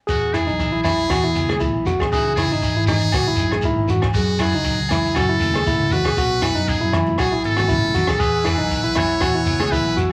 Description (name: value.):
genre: highlife guitar band.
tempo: 118 BPM.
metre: 4/4.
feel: straight.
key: E major.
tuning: A4 = 440 Hz.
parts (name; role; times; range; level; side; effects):
trumpet with metal mute; melody; 0.1-10.0 s; F#4 to C#5; -26 LUFS; equal; none.
clean electric guitar; accompaniment; 0.1-10.1 s; E2 to G#4; -31 LUFS; equal; none.
barky tine electric piano; arpeggios; 0.1-10.1 s; D#4 to G#4; -24 LUFS; equal; none.
fingered electric bass; bass; 0.1-10.1 s; G#1 to F#2; -27 LUFS; equal; none.
compact cocktail drum kit; drums; 0.1-10.1 s; hi-hat, kick drum, rim click; -28 LUFS; equal; none.
shekere; percussion; 0.1-10.1 s; none; -31 LUFS; equal; none.
agogo bells; percussion; 0.3-9.7 s; none; -33 LUFS; equal; none.
congas; percussion; 0.8-9.8 s; none; -32 LUFS; equal; none.
combo organ; sustained chords; 8.2-10.1 s; F#5 to E6; -34 LUFS; equal; none.
room: moderate large studio reverb, RT60 0.8 s.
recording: vinyl crackle.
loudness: -19 LUFS.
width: mono.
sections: 0.1-10.1 A section.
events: muted trumpet solo 0.1-10.1.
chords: 0.1 Eadd9; 2.1 C#madd9; 4.2 F#madd9; 6.2 Bsus2; 8.2 Eadd9.